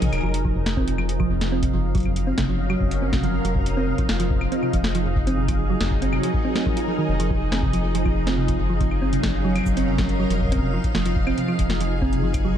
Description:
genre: IDM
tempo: 140 BPM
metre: 4/4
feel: straight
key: F phrygian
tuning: A4 = 440 Hz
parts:
  - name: soft string machine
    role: sustained chords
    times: 0.0-12.6 s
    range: F3 to F5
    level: -27 LUFS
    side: equal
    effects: ensemble chorus
  - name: thumb-piano-like synth pluck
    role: arpeggios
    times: 0.0-12.6 s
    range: F2 to F4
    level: -25 LUFS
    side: right 3 dB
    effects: chorus, ping-pong delay
  - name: round analog bass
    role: bass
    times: 0.0-12.6 s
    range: Eb1 to Bb1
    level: -25 LUFS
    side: equal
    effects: none
  - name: booming analog drum machine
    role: drums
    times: 0.0-12.4 s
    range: cabasa, claves, hi-hat, snare drum, toms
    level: -30 LUFS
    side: left 1 dB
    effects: tape echo
  - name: bubbling stepped-filter texture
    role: texture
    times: 0.5-12.6 s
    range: Eb4 to Eb5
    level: -33 LUFS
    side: left 1 dB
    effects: chorus, built-in reverb
  - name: electronic kick drum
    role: drums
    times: 0.4-12.4 s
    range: none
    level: -26 LUFS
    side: equal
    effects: none
room: light reverb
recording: dark, warm production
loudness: -20 LUFS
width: side -9 dB against mid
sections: 0.2-12.6 A section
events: break 0.0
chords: 0.2 Fm7; 1.9 Ebm9/Gb; 3.7 Fm7; 5.4 Gb69; 7.1 Fm7; 8.8 Ebm9/Gb; 10.5 Fm7

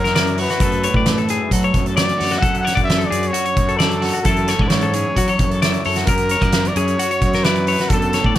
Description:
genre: math rock and midwest emo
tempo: 131 BPM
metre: 4/4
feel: straight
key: F# minor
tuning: A4 = 440 Hz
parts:
  - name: breathy trumpet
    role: melody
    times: 0.0-8.4 s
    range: F#4 to F#5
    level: -22 LUFS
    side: equal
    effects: digital delay
  - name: clean electric guitar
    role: accompaniment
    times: 0.0-8.4 s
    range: F#2 to A4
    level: -26 LUFS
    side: right 4 dB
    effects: none
  - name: clean electric guitar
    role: arpeggios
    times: 0.0-8.4 s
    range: F#4 to D5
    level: -22 LUFS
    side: left 7 dB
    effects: none
  - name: fuzz fingered electric bass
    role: bass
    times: 0.0-8.4 s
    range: F#2 to F#3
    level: -22 LUFS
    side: equal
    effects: overdrive
  - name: loose indie drum kit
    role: drums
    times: 0.1-8.4 s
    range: hi-hat, kick drum, snare drum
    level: -20 LUFS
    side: equal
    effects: none
room: light reverb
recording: none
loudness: -15 LUFS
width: side -13 dB against mid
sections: 0.0-8.4 A section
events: none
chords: 0.0 F#7; 0.6 Dmaj7/F#; 4.3 Amaj7/F#; 6.1 F#7

